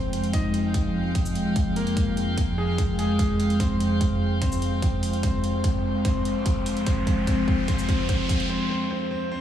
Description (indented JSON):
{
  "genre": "heavy wobble dubstep",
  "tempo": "147 BPM",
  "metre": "4/4",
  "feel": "half-time",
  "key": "F minor",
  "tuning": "A4 = 440 Hz",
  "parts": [
    { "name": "bright concert grand piano", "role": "melody", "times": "0.0-9.4 s", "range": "Ab3 to Eb5", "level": "-30 LUFS", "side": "left 2 dB", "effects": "diffuse ambient delay" },
    { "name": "evolving wavetable pad", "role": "sustained chords", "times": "0.0-8.5 s", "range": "F2 to G5", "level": "-25 LUFS", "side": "equal", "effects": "chorus, built-in reverb, sidechain pumping" },
    { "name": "dark chamber string section", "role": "texture", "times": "0.0-8.5 s", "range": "Ab3 to G5", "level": "-35 LUFS", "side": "equal", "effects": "sidechain pumping" },
    { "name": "electronic hi-hat and shaker", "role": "drums", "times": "0.1-8.5 s", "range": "none", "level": "-38 LUFS", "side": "right 2 dB", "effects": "none" },
    { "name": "electronic kick drum", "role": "drums", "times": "0.3-8.4 s", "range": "none", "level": "-26 LUFS", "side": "equal", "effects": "none" },
    { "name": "riser", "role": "sound effects", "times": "5.3-8.5 s", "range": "none", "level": "-35 LUFS", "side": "equal", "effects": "none" }
  ],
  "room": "wet cathedral reverb, RT60 6.6 s",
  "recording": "dreamy mix soaked in reverb, studio ambience",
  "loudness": "-22 LUFS",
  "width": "side -10 dB against mid",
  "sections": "0.0-9.4 A section",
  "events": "build-up 0.0-9.4; filter sweep on ambient pad 0.0-9.4; drum fill 3.6-8.5; riser 5.3-8.5; break 8.5-9.4",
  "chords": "0.0 Fmadd9"
}